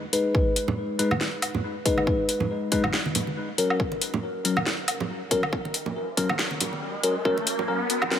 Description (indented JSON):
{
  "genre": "deep dubstep",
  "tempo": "139 BPM",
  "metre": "4/4",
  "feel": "swing 56% on 16ths, half-time",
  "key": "G# minor",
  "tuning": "A4 = 439 Hz",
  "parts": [
    { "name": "soft dub sub bass", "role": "bass", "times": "0.0-8.2 s", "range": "none", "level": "barely audible", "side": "none", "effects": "none" },
    { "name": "tine electric piano", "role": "stabs", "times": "0.1-8.2 s", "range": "F#3 to B4", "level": "-26 LUFS", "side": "left 2 dB", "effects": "phaser, low-pass filter, dub echo" },
    { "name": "dubstep drum kit", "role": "drums", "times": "0.1-8.2 s", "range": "hi-hat, snare drum, woodblock", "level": "-28 LUFS", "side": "equal", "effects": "high-pass filter on hats, high-pass filter on perc, high-pass filter on snare" },
    { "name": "electronic kick drum", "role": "drums", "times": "0.3-7.3 s", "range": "none", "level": "-27 LUFS", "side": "equal", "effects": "none" },
    { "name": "congas", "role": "percussion", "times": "0.7-8.1 s", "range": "none", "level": "-32 LUFS", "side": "right 4 dB", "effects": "dub echo" },
    { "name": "riser", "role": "sound effects", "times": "5.6-8.2 s", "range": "none", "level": "-33 LUFS", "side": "equal", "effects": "none" }
  ],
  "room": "moderate huge ambient reverb, RT60 4.2 s",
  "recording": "high-pass filter",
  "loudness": "-23 LUFS",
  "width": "side -9 dB against mid",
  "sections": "0.0-8.2 A section",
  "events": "build-up 0.0-8.2; riser 5.6-8.2",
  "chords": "0.0 G#m; 3.8 F#"
}